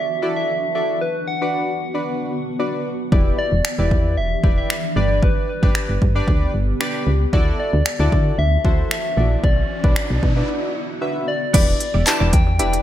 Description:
dance-pop; 114 BPM; 4/4; straight; E minor; A4 = 441 Hz
soft struck synth lead; melody; 0.0-12.8 s; B4 to A5; -24 LUFS; left 1 dB; chorus, digital delay
granular cloud pad; sustained chords; 0.0-12.8 s; D3 to G4; -29 LUFS; right 1 dB; built-in reverb, analog chorus, sidechain pumping
warm analog keys; accompaniment; 0.2-12.8 s; D4 to E5; -26 LUFS; left 1 dB; chorus, sidechain pumping
solid FM bass; bass; 3.1-12.8 s; E1 to D3; -19 LUFS; equal; sidechain pumping
deep house drum kit; drums; 3.1-12.8 s; crash cymbal, finger snaps, handclaps, hi-hat, kick drum; -18 LUFS; equal
riser; sound effects; 8.9-10.5 s; -32 LUFS; right 1 dB
direct-recorded clean electric guitar; riff; 11.5-12.8 s; B3 to D5; -28 LUFS; right 6 dB; analog chorus
tambourine; percussion; 12.1-12.2 s; -28 LUFS; left 11 dB
light reverb; bright 1980s-style digital production; -17 LUFS; side -12 dB against mid
0.0-11.5 A section; 11.5-12.8 B section
riser 8.9-11.5; break 10.5-11.5
0.0 Dadd9; 1.0 Bm; 3.1 Em7; 5.0 G; 7.3 Dadd9; 9.4 Bm; 11.5 Em7

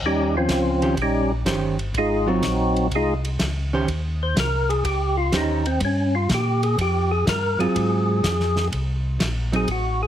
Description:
soul jazz organ trio; 124 BPM; 4/4; swing 68% on 8ths; Eb mixolydian; A4 = 440 Hz
mellow tonewheel organ; bass; 0.0-10.1 s; G1 to Bb2; -24 LUFS; equal; slow rotary speaker
warm soul drum kit; drums; 0.0-9.8 s; hi-hat, kick drum, ride cymbal, snare drum; -28 LUFS; equal
percussive tonewheel organ; melody; 0.1-10.1 s; F3 to C5; -22 LUFS; equal; slow rotary speaker, overdrive
hollow-body jazz guitar; accompaniment; 0.8-9.7 s; Eb3 to C5; -24 LUFS; right 3 dB
light reverb; heavily compressed radio sound; -19 LUFS; side -10 dB against mid
0.0-10.1 A section
tonewheel organ solo 0.0-10.1
0.0 Eb13; 1.9 Ab13; 3.9 Eb13; 7.7 Ab13

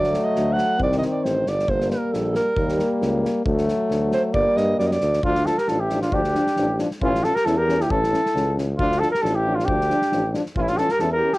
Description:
balkan folk, Balkan brass band; 135 BPM; 2/4; swing 53% on 16ths; G harmonic minor, D harmonic minor from 5.2 s; A4 = 441 Hz
dark alto saxophone; second line; 0.0-11.4 s; C#4 to F#5; -24 LUFS; right 1 dB; cassette tape
clear euphonium; accompaniment; 0.0-11.3 s; Eb3 to G3; -30 LUFS; right 2 dB; cassette tape
warm French horn; accompaniment; 0.0-11.3 s; A3 to D4; -26 LUFS; left 3 dB; cassette tape
clear tuba; bass; 0.0-11.2 s; G1 to G2; -25 LUFS; equal
loose indie drum kit; percussion; 0.0-11.4 s; kick drum, snare drum; -31 LUFS; equal; cassette tape
mellow cornet; melody; 5.2-11.4 s; E4 to Bb4; -21 LUFS; equal; cassette tape
light reverb; home recording on cassette; -19 LUFS; side -19 dB against mid
0.0-5.2 A section; 5.2-11.4 B section
alto saxophone solo 0.0-5.2
0.0 D; 0.8 Cm; 1.7 Gm; 2.6 Eb; 3.5 D; 4.3 Gm; 5.2 Dm; 7.0 A; 8.8 Dm; 10.6 A

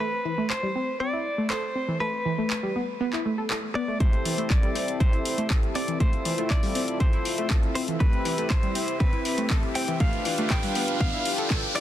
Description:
progressive house; 120 BPM; 4/4; straight; A minor; A4 = 438 Hz
direct-recorded clean electric guitar; melody; 0.0-11.8 s; B4 to G5; -31 LUFS; equal; tremolo, sidechain pumping, tape echo
analog pluck; arpeggios; 0.0-11.8 s; E3 to A4; -30 LUFS; equal; chorus, sidechain pumping, tape echo
house drum kit; drums; 0.5-11.8 s; handclaps, hi-hat; -33 LUFS; left 1 dB; sidechain pumping on hats
soft supersaw; stabs; 4.0-11.8 s; C4 to G5; -30 LUFS; left 2 dB; sidechain pumping, low-pass filter, tape echo
electronic kick drum; drums; 4.0-11.6 s; -23 LUFS; equal
riser; sound effects; 7.1-11.8 s; -36 LUFS; right 2 dB
digital ambience; dense, heavily limited modern master, high-pass filter; -23 LUFS; side -12 dB against mid
0.0-4.0 A section; 4.0-11.8 B section
filter sweep on synth pluck 0.0-4.0; build-up 4.0-11.8; filter sweep on supersaw synth 4.0-11.8; filter sweep 4.0-11.8; riser 7.1-11.8
0.0 Am/E; 2.0 N.C.; 4.0 Am7; 6.0 Fmaj7; 8.0 Cmaj7; 10.0 G7

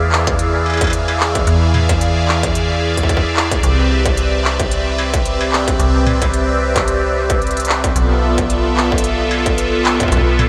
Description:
IDM; 111 BPM; 4/4; swing 56% on 16ths; A4 = 440 Hz
phased analog pad; sustained chords; 0.0-10.5 s; E3 to F5; -20 LUFS; equal; phaser, chorus, vintage 12-bit sampler grit
metallic FM bass; bass; 0.0-10.5 s; B1 to E2; -20 LUFS; equal
industrial drum kit; drums; 0.1-10.5 s; handclaps, hi-hat, struck metal, toms; -24 LUFS; equal; diffuse ambient delay
electronic kick drum; drums; 0.3-10.3 s; -22 LUFS; equal; distortion
moderate huge ambient reverb, RT60 8.9 s; dreamy mix soaked in reverb; -16 LUFS; mono
0.0-10.5 A section
0.0 E7b9; 3.6 Cmaj9; 8.0 Dm69/B

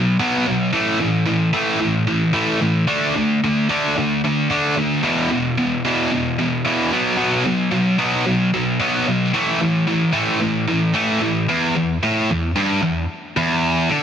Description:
rock; 112 BPM; 4/4; straight; A4 = 440 Hz
high-gain distorted guitar; solo; 0.0-14.0 s; E2 to D4; -16 LUFS; equal; distortion
moderate plate reverb, RT60 3.1 s; heavily compressed radio sound, multiband compression; -16 LUFS; side -8 dB against mid
0.0-11.5 A section; 11.5-14.0 B section
0.0 B5; 0.7 A5; 2.9 D5; 5.0 E5; 6.9 B5; 9.3 A5; 11.5 N.C.

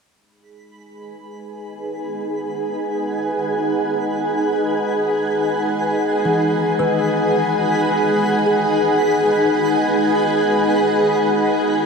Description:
ambient; free time; E major; A4 = 440 Hz
granular cloud pad; sustained chords; 1.0-11.9 s; D#4 to G#5; -17 LUFS; equal; built-in reverb
analog drone; drone; 1.2-11.9 s; G#3 to D#4; -28 LUFS; equal; chorus
twinkling granular texture; texture; 0.6-11.9 s; B5; -32 LUFS; right 2 dB; built-in reverb
kalimba; arpeggios; 6.3-11.9 s; D#3 to E6; -26 LUFS; left 2 dB; diffuse ambient delay
wet shimmer reverb, RT60 7.3 s; dark, warm production; -16 LUFS; side -5 dB against mid
0.1-11.9 A section
fade-in on kalimba 0.1-11.9; fade-in on synth drone 0.1-11.9; fade-in on synth texture 0.1-11.9
0.1 Emaj7

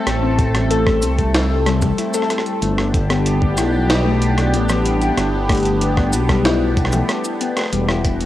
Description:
IDM; 94 BPM; 4/4; straight; A4 = 443 Hz
phased analog pad; sustained chords; 0.0-8.3 s; E3 to A4; -22 LUFS; right 1 dB; phaser, chorus, cassette tape
dark detuned saw bass; bass; 0.1-8.3 s; E1 to C2; -19 LUFS; equal; tube saturation
jungle sampler-style drum kit; drums; 0.1-8.3 s; cabasa, hi-hat, rim click, snare drum, toms; -23 LUFS; equal; overdrive, cassette tape
harp-like synth pluck; arpeggios; 0.2-8.0 s; G3 to A4; -22 LUFS; left 6 dB; chorus, cassette tape, tape echo
electronic kick drum; drums; 0.4-8.2 s; -20 LUFS; equal; overdrive, cassette tape
light reverb, digital ambience; home recording on cassette; -15 LUFS; side -13 dB against mid
0.0-8.3 A section
0.0 Am; 2.6 G; 7.7 Em7

